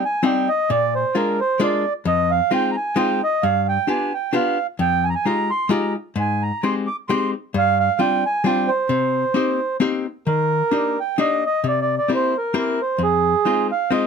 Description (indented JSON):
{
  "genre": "musette waltz",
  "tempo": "132 BPM",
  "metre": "3/4",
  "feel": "swing 53% on 8ths",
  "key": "C minor, Eb major from 10.3 s",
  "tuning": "A4 = 440 Hz",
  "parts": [
    { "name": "mellow accordion", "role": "melody", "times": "0.0-14.1 s", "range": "Ab4 to D6", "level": "-20 LUFS", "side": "right 4 dB", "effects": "none" },
    { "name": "archtop guitar, miked and amplified", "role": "accompaniment", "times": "0.0-14.1 s", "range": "F2 to G4", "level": "-21 LUFS", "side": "left 4 dB", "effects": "none" }
  ],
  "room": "light reverb",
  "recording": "close, detailed microphones",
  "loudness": "-18 LUFS",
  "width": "side -6 dB against mid",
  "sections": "0.0-10.3 A section; 10.3-14.1 B section",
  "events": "none",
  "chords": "0.0 Cm7; 0.7 Bb7; 2.1 Fm7; 3.4 G7; 4.8 Fm9; 6.2 Abmaj7; 7.5 G7sus4; 8.9 Cm7; 10.3 Ebmaj7; 11.6 C7; 13.0 Fm7"
}